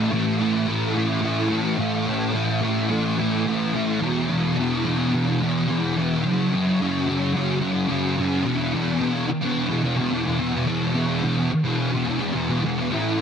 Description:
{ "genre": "rock", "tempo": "108 BPM", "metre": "4/4", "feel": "straight", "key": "unclear", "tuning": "A4 = 440 Hz", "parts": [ { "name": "thick fuzz guitar", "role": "solo", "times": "0.0-13.2 s", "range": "E2 to A3", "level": "-20 LUFS", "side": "equal", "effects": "distortion, ensemble chorus" } ], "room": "light reverb, digital ambience", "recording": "dense, heavily limited modern master", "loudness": "-20 LUFS", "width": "side -7 dB against mid", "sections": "0.0-8.5 A section; 8.5-13.2 B section", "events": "none", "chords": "0.0 A5; 4.0 E5; 6.2 F#5; 8.5 E5", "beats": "0.12 0.68 1.23 | 1.79 2.34 2.90 3.45 | 4.01 4.56 5.12 5.67 | 6.23 6.78 7.34 7.89 | 8.45 9.01 9.56 10.12 | 10.68 11.24 11.79 12.35 | 12.91" }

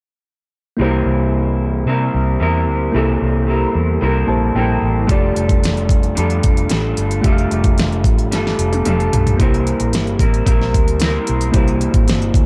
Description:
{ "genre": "indie pop, bedroom pop", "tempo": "112 BPM", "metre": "4/4", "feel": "straight", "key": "unclear", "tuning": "A4 = 437 Hz", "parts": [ { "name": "electric guitar through a small old amp", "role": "accompaniment", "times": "0.8-12.5 s", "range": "C3 to Bb4", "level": "-23 LUFS", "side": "equal", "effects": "lush chorus, warbly pitch drift" }, { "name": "mellow tine electric piano", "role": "accompaniment", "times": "0.8-12.5 s", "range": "A3 to A5", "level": "-23 LUFS", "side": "equal", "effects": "cassette tape" }, { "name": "vintage muted fingered electric bass", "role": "bass", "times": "0.8-12.5 s", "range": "F1 to C3", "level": "-21 LUFS", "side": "equal", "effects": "none" }, { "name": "pop drum kit", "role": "drums", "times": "5.1-12.5 s", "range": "hi-hat, kick drum, snare drum, toms", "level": "-18 LUFS", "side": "equal", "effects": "vintage 12-bit sampler grit" } ], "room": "light reverb", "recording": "dark, warm production", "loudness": "-16 LUFS", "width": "mono", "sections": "0.8-9.4 A section; 9.4-12.5 B section", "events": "tine electric piano fill 4.0-5.1; drum fill 8.3-9.4", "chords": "0.8 C7; 5.1 F69; 9.4 C7", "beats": "| 0.80 1.33 1.87 2.41 | 2.95 3.48 4.02 4.56 | 5.10 5.63 6.17 6.71 | 7.25 7.78 8.32 8.86 | 9.39 9.93 10.47 11.01 | 11.54 12.08" }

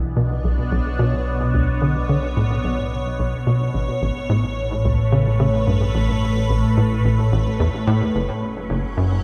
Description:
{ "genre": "ambient, sequencer-driven space music", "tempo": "109 BPM", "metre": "4/4", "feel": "straight", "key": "B minor", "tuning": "A4 = 440 Hz", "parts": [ { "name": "evolving wavetable pad", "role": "sustained chords", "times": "0.0-9.2 s", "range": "A2 to F#5", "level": "-24 LUFS", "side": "equal", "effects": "ensemble chorus, built-in reverb, phaser" }, { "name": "tight sequencer bass", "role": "riff", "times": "0.0-9.2 s", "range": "F#1 to D3", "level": "-23 LUFS", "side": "equal", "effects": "lush chorus, tape echo" }, { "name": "warm sub bass", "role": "bass", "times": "0.0-9.2 s", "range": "F#1 to B1", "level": "-30 LUFS", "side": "equal", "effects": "tube saturation" } ], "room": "light reverb", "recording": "echo-heavy mix", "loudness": "-20 LUFS", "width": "mono", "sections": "0.0-9.2 A section", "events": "none", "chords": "0.0 Bmadd9; 3.7 Aadd9; 8.1 F#", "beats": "0.44 0.99 | 1.54 2.09 2.64 3.19 | 3.74 4.29 4.84 5.39 | 5.95 6.50 7.05 7.60 | 8.15 8.70" }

